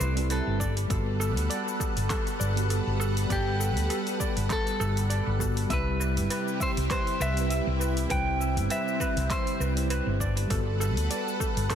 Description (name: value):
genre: sunset chillout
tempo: 100 BPM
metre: 4/4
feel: swing 56% on 16ths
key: G major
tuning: A4 = 441 Hz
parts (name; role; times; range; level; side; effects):
- clean electric guitar; melody; 0.0-10.2 s; G4 to G5; -33 LUFS; equal; spring reverb, tape echo
- mellow tine electric piano; accompaniment; 0.0-11.8 s; G3 to F#5; -34 LUFS; moving between left 5 dB and right 5 dB; medium stereo tremolo, auto-pan, digital delay
- lush unison pad; sustained chords; 0.0-11.8 s; C3 to F#5; -34 LUFS; equal; chorus, phaser
- steel pan; arpeggios; 0.0-11.8 s; A4 to E5; -36 LUFS; right 3 dB; digital delay
- hollow-body short-scale fingered electric bass; bass; 0.0-11.7 s; G1 to D2; -28 LUFS; equal; none
- deep house drum kit; drums; 0.0-11.8 s; cabasa, handclaps, hi-hat; -36 LUFS; left 2 dB; overdrive
- electronic kick drum; drums; 0.6-11.8 s; none; -32 LUFS; equal; overdrive
room: light reverb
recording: dense, heavily limited modern master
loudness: -25 LUFS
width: side -9 dB against mid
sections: 0.0-11.8 A section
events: none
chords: 0.0 Cmaj7; 0.6 Gmaj9; 5.7 Cmaj7; 10.2 Gmaj9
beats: 0.30 | 0.90 1.50 2.10 2.70 | 3.30 3.90 4.50 5.10 | 5.70 6.30 6.90 7.50 | 8.10 8.70 9.30 9.90 | 10.50 11.10 11.70